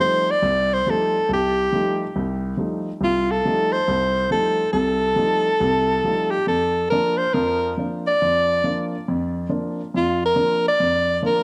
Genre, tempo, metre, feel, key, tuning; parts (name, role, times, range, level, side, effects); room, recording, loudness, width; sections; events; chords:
jazz; 139 BPM; 4/4; swing 66% on 8ths; F mixolydian; A4 = 439 Hz
clear soprano saxophone; melody; 0.0-11.4 s; F4 to D5; -22 LUFS; equal
warm grand piano; accompaniment; 0.0-11.4 s; C2 to Eb4; -26 LUFS; equal
moderate spring reverb, RT60 2.0 s, small room reverb; dark, warm production; -21 LUFS; mono
0.0-11.4 A section
0.0 F9; 6.5 Bb/F